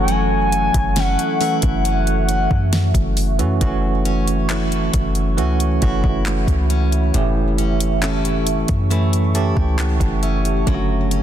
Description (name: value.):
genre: contemporary R&B.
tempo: 68 BPM.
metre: 4/4.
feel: straight.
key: F# minor.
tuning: A4 = 440 Hz.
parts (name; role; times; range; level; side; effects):
gliding portamento lead; melody; 0.0-3.1 s; F#5 to G#5; -22 LUFS; left 2 dB; chorus, ping-pong delay.
bell-like tine electric piano; accompaniment; 0.0-11.2 s; D3 to A5; -22 LUFS; right 5 dB; fast stereo tremolo.
deep dark ambient pad; sustained chords; 0.0-11.2 s; F#4 to C#6; -26 LUFS; right 3 dB; chorus, built-in reverb.
picked plugged-in steel-string acoustic guitar; arpeggios; 0.0-11.2 s; A2 to A4; -28 LUFS; left 10 dB; ping-pong delay.
clean 808-style bass; bass; 0.0-11.2 s; F#1 to F#2; -19 LUFS; equal; none.
smooth R&B drum kit; drums; 0.1-11.2 s; handclaps, hi-hat, kick drum, snare drum; -23 LUFS; equal; overdrive.
room: digital ambience.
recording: dense, heavily limited modern master.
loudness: -16 LUFS.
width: side -10 dB against mid.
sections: 0.0-3.6 A section; 3.6-11.2 B section.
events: tine electric piano fill 8.9-10.7.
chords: 0.0 F#m7; 7.1 A7/F#; 10.7 Dmaj7/F#.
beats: | 0.08 0.96 1.85 2.73 | 3.61 4.49 5.38 6.26 | 7.14 8.02 8.90 9.79 | 10.67.